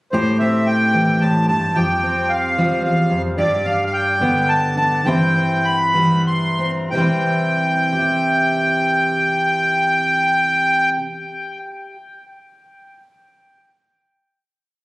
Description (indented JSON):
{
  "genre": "indie folk with a building arrangement",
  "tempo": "88-111 BPM",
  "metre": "3/4",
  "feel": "straight",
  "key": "C major",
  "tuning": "A4 = 442 Hz",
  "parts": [
    { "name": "accordion", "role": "melody", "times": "0.1-10.9 s", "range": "C5 to C6", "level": "-18 LUFS", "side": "equal", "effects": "analog delay" },
    { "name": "fingerpicked steel-string acoustic guitar", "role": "accompaniment", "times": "0.1-12.0 s", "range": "E2 to E5", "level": "-19 LUFS", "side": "equal", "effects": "none" }
  ],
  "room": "light reverb",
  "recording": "recorded on a phone in the room, club reverb, compression",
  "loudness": "-15 LUFS",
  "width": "side -21 dB against mid",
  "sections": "0.1-6.9 breakdown; 6.9-11.0 final chord",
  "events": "slowing down 3.4-6.9",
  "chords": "0.1 Am7; 1.8 Fsus2; 3.4 G; 5.1 C/G; 6.9 C"
}